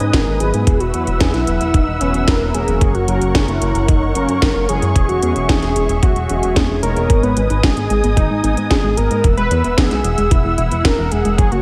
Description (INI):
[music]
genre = italo disco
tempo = 112 BPM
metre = 4/4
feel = straight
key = unclear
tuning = A4 = 440 Hz
[part]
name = unison lead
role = melody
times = 0.0-11.6 s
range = C#4 to B4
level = -23 LUFS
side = equal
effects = tape echo
[part]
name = muted studio string section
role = sustained chords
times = 0.0-11.6 s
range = B3 to E6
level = -27 LUFS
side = equal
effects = none
[part]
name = mellow synth brass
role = stabs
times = 0.0-7.3 s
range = E3 to C#5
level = -26 LUFS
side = equal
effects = chorus
[part]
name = chorused synth bass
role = bass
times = 0.0-11.6 s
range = E1 to G#2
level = -22 LUFS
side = equal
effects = none
[part]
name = house drum kit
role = drums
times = 0.0-11.6 s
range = hi-hat, snare drum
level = -24 LUFS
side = equal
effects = gated reverb
[part]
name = electronic kick drum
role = drums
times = 0.1-11.5 s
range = none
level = -17 LUFS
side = equal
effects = none
[part]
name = warbly dusty pluck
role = arpeggios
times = 7.1-11.6 s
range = B2 to G#4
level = -27 LUFS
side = equal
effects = chorus, digital delay
[sound]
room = light reverb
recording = none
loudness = -16 LUFS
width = mono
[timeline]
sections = 0.0-11.6 A section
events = none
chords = 0.0 G#m; 0.7 Esus2; 2.8 F#; 5.0 C#m/E; 7.1 G#m; 9.2 Esus2